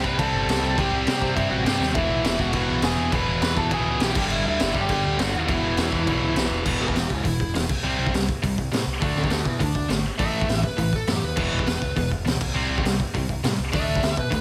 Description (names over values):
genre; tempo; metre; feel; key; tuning
punk rock; 204 BPM; 4/4; straight; unclear; A4 = 440 Hz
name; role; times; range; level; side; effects
smooth overdriven lead guitar; melody; 0.0-14.4 s; G#3 to B5; -30 LUFS; equal; none
cranked stack guitar; riff; 0.0-14.4 s; E2 to D4; -31 LUFS; equal; overdrive
tight distorted guitar; riff; 0.0-14.4 s; E2 to D4; -31 LUFS; equal; distortion
growling picked electric bass; bass; 0.0-14.4 s; E1 to C3; -31 LUFS; equal; overdrive
raw garage drum kit; drums; 0.0-14.4 s; crash cymbal, hi-hat, kick drum, snare drum; -28 LUFS; equal; none
room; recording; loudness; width
light reverb; none; -23 LUFS; mono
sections
0.0-6.7 A section; 6.7-14.4 B section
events
drum fill 1.8; lead electric guitar solo 6.7-14.4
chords
0.0 C5; 2.0 E; 4.2 G5; 5.5 E5; 7.7 C5; 9.0 D5; 10.2 A5; 11.4 E5; 12.4 C5; 13.7 D5